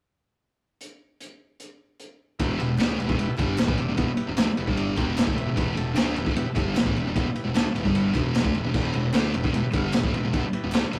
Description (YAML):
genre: garage rock duo or trio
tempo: 151 BPM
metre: 4/4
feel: straight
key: E minor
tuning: A4 = 440 Hz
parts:
  - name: crunchy breakbeat drum kit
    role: drums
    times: 0.8-11.0 s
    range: crash cymbal, hi-hat, kick drum, ride cymbal, snare drum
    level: -28 LUFS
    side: equal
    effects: none
  - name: combo organ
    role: sustained chords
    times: 2.4-11.0 s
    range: E4 to G5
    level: -38 LUFS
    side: equal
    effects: none
  - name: thick fuzz guitar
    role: riff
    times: 2.4-11.0 s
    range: E2 to D4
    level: -28 LUFS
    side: equal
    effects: distortion
  - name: growling picked electric bass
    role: bass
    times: 2.4-11.0 s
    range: E1 to D2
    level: -34 LUFS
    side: equal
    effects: overdrive
  - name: group handclap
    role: percussion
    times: 2.8-10.8 s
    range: none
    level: -47 LUFS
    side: equal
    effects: none
room: moderate small room reverb, RT60 0.5 s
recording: rough rehearsal-room recording, warm saturation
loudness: -25 LUFS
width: mono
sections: 0.8-2.4 A section; 2.4-11.0 B section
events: transistor combo organ fill 4.8-5.6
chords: 0.8 N.C.; 2.4 Em